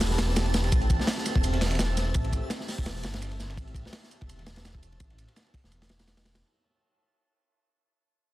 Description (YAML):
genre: drum and bass, jungle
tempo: 168 BPM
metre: 4/4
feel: swing 54% on 16ths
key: A minor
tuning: A4 = 438 Hz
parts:
  - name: soft string machine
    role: sustained chords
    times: 0.0-6.4 s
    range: C4 to E5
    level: -36 LUFS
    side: right 1 dB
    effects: phaser, ensemble chorus
  - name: detuned saw bass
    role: bass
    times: 0.0-6.4 s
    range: E1 to A1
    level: -29 LUFS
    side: equal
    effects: none
  - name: crunchy breakbeat drum kit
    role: drums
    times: 0.0-6.4 s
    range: hi-hat, kick drum, ride cymbal, snare drum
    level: -28 LUFS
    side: equal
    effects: none
  - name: dusty soul sampler-style drum kit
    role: drums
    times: 0.0-6.4 s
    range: hi-hat, shaker, snare drum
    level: -40 LUFS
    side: right 4 dB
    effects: high-pass filter on perc, high-pass filter on hats, high-pass filter on snare, high-pass filter on room
  - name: twinkling granular texture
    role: texture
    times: 0.0-6.4 s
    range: A5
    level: -40 LUFS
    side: right 2 dB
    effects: built-in reverb
room: light reverb, small room ambience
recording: dense, heavily limited modern master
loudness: -25 LUFS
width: side -16 dB against mid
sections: 0.0-6.4 A section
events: fade-out 0.0-6.4; filter sweep on detuned saw bass 0.0-6.4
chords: 0.0 Am9